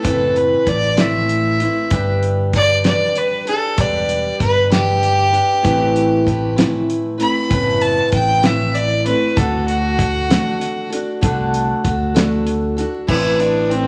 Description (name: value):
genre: folk rock and heartland rock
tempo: 64 BPM (dotted quarters)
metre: 6/8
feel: straight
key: unclear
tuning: A4 = 441 Hz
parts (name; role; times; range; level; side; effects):
- clear fiddle; melody; 0.0-13.9 s; C4 to B5; -21 LUFS; equal; none
- picked steel-string acoustic guitar; accompaniment; 0.0-13.9 s; A2 to B4; -21 LUFS; equal; none
- fingered electric bass; bass; 0.0-13.9 s; E1 to D2; -24 LUFS; equal; none
- damped 70s drum kit; drums; 0.0-13.9 s; crash cymbal, hi-hat, kick drum, snare drum; -22 LUFS; equal; none
room: wet large studio reverb, RT60 1.1 s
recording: vinyl crackle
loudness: -17 LUFS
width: mono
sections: 0.0-13.1 A section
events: fiddle solo 0.0-13.1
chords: 0.0 Amadd9; 1.9 G; 5.6 Amadd9; 9.4 D; 13.1 Amadd9